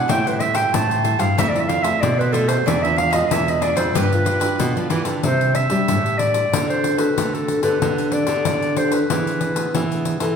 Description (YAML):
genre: samba and choro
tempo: 93 BPM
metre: 4/4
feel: straight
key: C major from 5.2 s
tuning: A4 = 440 Hz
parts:
  - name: warm clarinet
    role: melody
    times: 0.0-10.1 s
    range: A4 to A5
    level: -21 LUFS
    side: right 1 dB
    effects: none
  - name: cavaquinho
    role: accompaniment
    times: 0.0-5.2 s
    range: D4 to G5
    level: -29 LUFS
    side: right 4 dB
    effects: none
  - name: nylon-string guitar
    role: accompaniment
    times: 0.0-10.4 s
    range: A2 to B4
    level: -27 LUFS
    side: left 2 dB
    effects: none
  - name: nylon-string guitar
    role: bass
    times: 0.1-10.4 s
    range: E2 to G3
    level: -22 LUFS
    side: equal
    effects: none
  - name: pandeiro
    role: percussion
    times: 0.1-10.4 s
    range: none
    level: -24 LUFS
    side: left 4 dB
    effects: none
room: wet large studio reverb, RT60 1.4 s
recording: band playing live in one room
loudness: -17 LUFS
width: side -6 dB against mid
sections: 0.0-5.2 A section; 5.2-10.4 B section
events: clarinet solo 0.0-5.2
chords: 0.1 Am7; 1.4 Fmaj7; 2.7 E7b9; 4.0 G7; 5.2 Csus2; 6.5 D7; 7.8 Gadd9/D; 9.1 E7